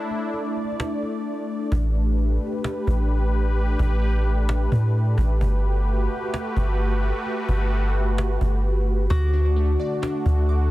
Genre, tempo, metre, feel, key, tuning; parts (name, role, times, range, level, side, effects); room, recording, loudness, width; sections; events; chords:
hip hop, atmospheric cloud-rap; 130 BPM; 4/4; half-time; A4 = 440 Hz
sweeping resonant pad; sustained chords; 0.0-10.7 s; D3 to D5; -27 LUFS; equal; chorus
cajon; drums; 0.1-10.7 s; -32 LUFS; equal
soft 808-style bass; bass; 1.7-10.7 s; G1 to A2; -20 LUFS; equal
Celtic harp; melody; 9.1-10.7 s; F#4; -28 LUFS; left 4 dB; tape echo
glassy digital keys; arpeggios; 9.1-10.7 s; A3 to D6; -32 LUFS; right 2 dB; chorus, tape echo
small room ambience; dense, heavily limited modern master; -20 LUFS; side -16 dB against mid
0.0-9.1 A section; 9.1-10.7 B section
break 0.0-1.7; silent gap 1.3-1.7
0.0 Asus4; 1.7 A9sus4; 5.4 Gmaj9; 9.1 D